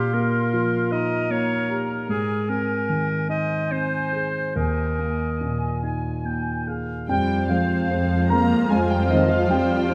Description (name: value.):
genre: cinematic, emotional film score for orchestra.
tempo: 49 BPM (dotted quarters).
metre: 6/8.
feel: uneven beats, rubato.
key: F minor.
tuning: A4 = 444 Hz.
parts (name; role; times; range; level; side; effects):
bright clarinet; second line; 0.0-9.9 s; G4 to F5; -30 LUFS; equal; none.
bright large flute ensemble; second line; 0.0-9.9 s; Eb5 to C6; -36 LUFS; equal; none.
warm oboe; second line; 0.0-9.9 s; Bb4 to Ab5; -34 LUFS; equal; none.
dark concert grand piano; accompaniment; 0.0-9.9 s; Eb2 to Bb5; -26 LUFS; equal; none.
muted symphonic violin section; melody; 7.1-9.9 s; C5; -34 LUFS; equal; none.
muted symphonic violin section; second line; 7.1-9.9 s; Eb5 to Bb5; -38 LUFS; equal; none.
muted symphonic viola section; accompaniment; 7.1-9.9 s; F3 to F4; -32 LUFS; equal; none.
mellow French horn section; sustained chords; 7.1-9.9 s; Eb3 to Bb3; -31 LUFS; equal; none.
muted chamber cello section; bass; 7.1-9.9 s; Eb3 to Bb3; -27 LUFS; equal; none.
muted symphonic double bass section; bass; 7.1-9.9 s; F2; -28 LUFS; equal; none.
room: moderate scoring stage reverb, RT60 2.0 s.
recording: none.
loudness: -23 LUFS.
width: mono.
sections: 0.0-7.1 A section; 7.1-9.9 B section.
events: none.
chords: 0.0 Ebadd9/Bb; 2.1 Abadd9; 4.6 Ebsus4; 7.1 Fm.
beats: 0.92 | 2.09 3.30 | 4.56 5.84 | 7.10 8.31 | 9.50.